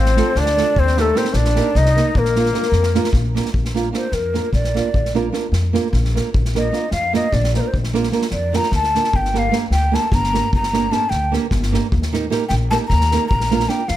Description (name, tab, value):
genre	balkan folk, Balkan wedding band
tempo	301 BPM (eighths)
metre	7/8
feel	straight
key	Bb major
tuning	A4 = 440 Hz
part	breathy ney	melody	0.0-14.0 s	A4 to Bb5	-20 LUFS	left 1 dB	none
part	mellow trumpet	second line	0.0-3.1 s	A3 to Eb4	-24 LUFS	left 5 dB	none
part	upright bass	bass	0.0-14.0 s	G1 to F2	-19 LUFS	left 1 dB	none
part	unplugged drum kit	percussion	0.1-13.9 s	kick drum, snare drum	-24 LUFS	equal	none
part	nylon-string guitar	accompaniment	0.2-13.8 s	A3 to Bb4	-22 LUFS	right 6 dB	none
room	light reverb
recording	none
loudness	-16 LUFS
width	side -13 dB against mid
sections	0.0-3.6 A section; 3.6-14.0 B section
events	ney solo 3.6-14.0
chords	0.0 Dm; 0.8 Eb; 2.2 Bb; 9.1 Gm; 11.9 Eb; 13.3 Bb